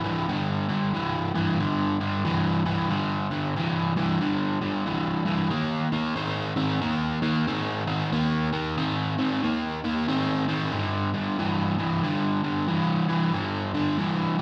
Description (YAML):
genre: rock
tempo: 92 BPM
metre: 4/4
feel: swing 62% on 8ths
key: G minor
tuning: A4 = 444 Hz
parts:
  - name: crunchy overdriven guitar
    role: solo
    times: 0.0-14.4 s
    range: G2 to C4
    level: -26 LUFS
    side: equal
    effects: none
room: wet large studio reverb, RT60 1.2 s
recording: band playing live in one room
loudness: -26 LUFS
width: mono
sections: 0.0-14.4 A section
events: none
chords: 0.0 G5; 5.5 Eb5; 10.7 G5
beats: | 0.30 0.95 1.60 2.25 | 2.90 3.55 4.20 4.86 | 5.51 6.16 6.81 7.47 | 8.12 8.77 9.43 10.08 | 10.73 11.39 12.04 12.70 | 13.35 14.00